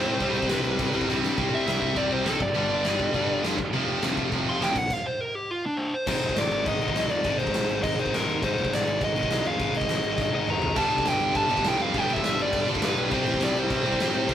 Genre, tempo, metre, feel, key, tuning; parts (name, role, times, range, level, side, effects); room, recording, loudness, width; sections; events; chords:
punk rock; 205 BPM; 4/4; straight; A4 = 440 Hz
dark smooth lead guitar; melody; 0.0-14.3 s; D4 to C6; -27 LUFS; equal; overdrive
distorted electric guitar; riff; 0.0-14.3 s; F2 to C4; -29 LUFS; left 6 dB; overdrive
high-gain distorted guitar; riff; 0.0-14.3 s; F2 to E4; -35 LUFS; right 1 dB
tight distorted guitar; riff; 0.0-4.8, 10.8-14.3 s; F2 to C4; -29 LUFS; right 6 dB; distortion
fuzz picked electric bass; bass; 0.0-14.3 s; F1 to A2; -32 LUFS; equal; overdrive
big rock drum kit; drums; 0.1-14.3 s; crash cymbal, kick drum, snare drum, toms; -30 LUFS; equal
moderate stone room reverb, RT60 1.0 s; rough rehearsal-room recording; -23 LUFS; side -10 dB against mid
0.0-1.4 A section; 1.4-6.1 B section; 6.1-14.3 A section
drum fill 1.1, 10.2-10.8; lead electric guitar solo 1.4-6.1; stop 4.9-6.1
0.0 C; 2.4 G; 3.6 F; 4.7 Bb; 6.1 Ab; 10.8 G; 13.1 C